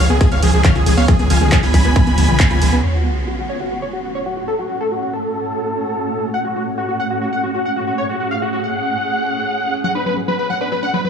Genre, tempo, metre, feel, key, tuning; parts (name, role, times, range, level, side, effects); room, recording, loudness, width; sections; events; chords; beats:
uplifting trance; 137 BPM; 4/4; straight; F# harmonic minor; A4 = 440 Hz
dense compressed supersaw; melody; 0.0-11.1 s; F#4 to B5; -21 LUFS; equal; sidechain pumping, low-pass filter, tape echo
plucky unison lead; second line; 0.0-11.1 s; F#4 to B5; -27 LUFS; left 1 dB; lush chorus, sidechain pumping, tape echo
shimmering ambient pad; sustained chords; 0.0-11.1 s; A2 to G#4; -24 LUFS; right 1 dB; chorus, built-in reverb, sidechain pumping
wide unison pluck; arpeggios; 0.0-2.8, 9.8-11.1 s; E#3 to B4; -23 LUFS; left 2 dB; sidechain pumping, tape echo
gritty driven synth bass; bass; 0.0-2.8 s; B1 to D2; -15 LUFS; right 1 dB; sidechain pumping
punchy analog drum machine; drums; 0.1-2.8 s; handclaps, hi-hat, ride cymbal, toms; -23 LUFS; left 1 dB; overdrive, low-pass filter on hats, low-pass filter on cymbals, low-pass filter on toms, low-pass filter on snare
electronic kick drum; drums; 0.2-2.5 s; -15 LUFS; equal; overdrive
sub drop; sound effects; 2.8-4.6 s; -21 LUFS; equal
light reverb, digital ambience; small room ambience; -15 LUFS; side -7 dB against mid
0.0-2.8 A section; 2.8-11.1 B section
drop 0.0-2.8; band accent 2.4; impact 2.8-4.6; filter sweep on supersaw synth 2.8-11.1; filter sweep on digital synth lead 2.8-11.1
0.0 C#7; 2.8 F#madd9; 9.8 Bm
0.21 0.65 | 1.08 1.52 1.96 2.40 | 2.83 3.27 3.71 4.15 | 4.59 5.03 5.46 5.90 | 6.34 6.78 7.21 7.65 | 8.09 8.53 8.97 9.40 | 9.84 10.28 10.72